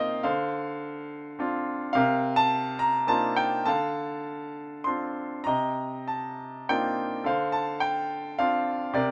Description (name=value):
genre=classical, lyrical solo piano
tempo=103 BPM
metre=3/4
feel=uneven beats, rubato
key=unclear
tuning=A4 = 440 Hz
part: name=bright concert grand piano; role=solo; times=0.0-9.1 s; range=C3 to C6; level=-28 LUFS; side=equal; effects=none
room=light reverb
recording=none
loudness=-28 LUFS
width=mono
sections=0.0-9.1 A section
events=none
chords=0.2 Dm7; 1.9 Cm11; 3.7 Dm7; 5.5 Cm11; 7.2 Dm7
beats=| 0.23 0.81 1.39 | 1.95 2.51 3.08 | 3.66 4.24 4.84 | 5.46 6.07 6.68 | 7.25 7.81 8.39 | 8.95